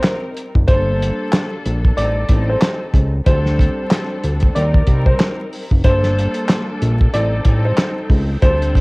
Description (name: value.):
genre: hip hop, boom-bap hip-hop.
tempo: 93 BPM.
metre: 4/4.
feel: swing 59% on 16ths.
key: G minor.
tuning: A4 = 439 Hz.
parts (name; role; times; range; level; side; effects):
warm upright piano; melody; 0.0-8.8 s; C5 to D5; -22 LUFS; equal; high-pass filter, low-pass filter, cassette tape, analog delay.
warm studio string section; accompaniment; 0.0-8.8 s; G3 to Bb4; -25 LUFS; left 1 dB; high-pass filter, low-pass filter, cassette tape.
cloth-damped thuddy drum kit; drums; 0.0-8.8 s; handclaps, hi-hat, kick drum, snare drum; -16 LUFS; equal; cassette tape.
fat analog bass; bass; 0.6-8.8 s; F#1 to Eb2; -17 LUFS; equal; none.
bright tonewheel organ; sustained chords; 5.8-8.8 s; Bb3 to G5; -33 LUFS; equal; chorus vibrato, fast rotary speaker, high-pass filter, low-pass filter, cassette tape.
room: light reverb.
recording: home recording on cassette, vinyl crackle.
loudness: -14 LUFS.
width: side -28 dB against mid.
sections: 0.0-8.8 A section.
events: none.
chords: 0.0 Cm7; 0.7 Gmadd9; 2.0 Am7b5; 3.3 D7sus4; 4.6 Cm7; 5.8 Gmadd9; 7.1 Am7b5.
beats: 0.04 | 0.68 1.33 1.98 2.62 | 3.27 3.91 4.55 5.20 | 5.85 6.49 7.14 7.78 | 8.43.